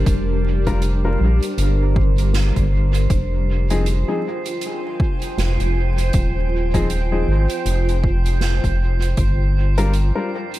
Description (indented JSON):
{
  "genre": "ambient dub",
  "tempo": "79 BPM",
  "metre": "4/4",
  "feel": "swing 59% on 16ths",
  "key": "F dorian",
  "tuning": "A4 = 438 Hz",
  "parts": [
    { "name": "granular cloud pad", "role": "sustained chords", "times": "0.0-10.6 s", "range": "G3 to Ab5", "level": "-26 LUFS", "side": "equal", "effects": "built-in reverb" },
    { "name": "round analog bass", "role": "bass", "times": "0.0-10.1 s", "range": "Eb1 to Bb1", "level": "-18 LUFS", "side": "equal", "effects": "tube saturation" },
    { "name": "drifting glass-harmonics texture", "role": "texture", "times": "0.0-10.6 s", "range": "C5", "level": "-32 LUFS", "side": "right 8 dB", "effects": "chorus, built-in reverb" },
    { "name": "electronic kick drum", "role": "drums", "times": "0.1-9.4 s", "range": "none", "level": "-21 LUFS", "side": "equal", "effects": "overdrive" },
    { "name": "soft-mallet drum kit", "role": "drums", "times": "0.1-10.6 s", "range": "hi-hat, snare drum", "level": "-31 LUFS", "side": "right 5 dB", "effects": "dub echo" },
    { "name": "dark upright piano", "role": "stabs", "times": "0.7-10.3 s", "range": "F3 to Bb4", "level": "-26 LUFS", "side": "left 3 dB", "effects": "dub echo" }
  ],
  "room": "small room reverb",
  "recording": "vinyl crackle",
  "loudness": "-16 LUFS",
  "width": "side -16 dB against mid",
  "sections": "0.0-10.6 A section",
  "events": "none",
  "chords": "0.0 Gm7; 3.1 Fm7; 9.2 Gm7"
}